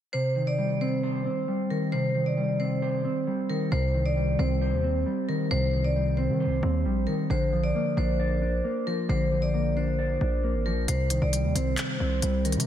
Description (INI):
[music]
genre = hip hop, trap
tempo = 134 BPM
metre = 4/4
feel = half-time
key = C minor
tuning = A4 = 440 Hz
[part]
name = vibraphone with hard mallets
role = melody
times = 0.1-12.6 s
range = Bb4 to D5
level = -30 LUFS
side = equal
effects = low-pass filter, tape echo
[part]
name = mellow electric guitar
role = accompaniment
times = 0.1-12.7 s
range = C3 to D5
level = -27 LUFS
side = equal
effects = wide subtle chorus, low-pass filter
[part]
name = distorted 808-style bass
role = bass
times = 3.7-12.7 s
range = Ab1 to Eb3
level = -27 LUFS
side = equal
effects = distortion
[part]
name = trap drum kit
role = drums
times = 10.9-12.7 s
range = handclaps, hi-hat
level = -31 LUFS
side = left 1 dB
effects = none
[sound]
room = light reverb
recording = none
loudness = -24 LUFS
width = side -10 dB against mid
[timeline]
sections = 0.1-3.7 A section; 3.7-12.7 B section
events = none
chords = 0.1 Cm; 7.3 Bb; 10.9 Cm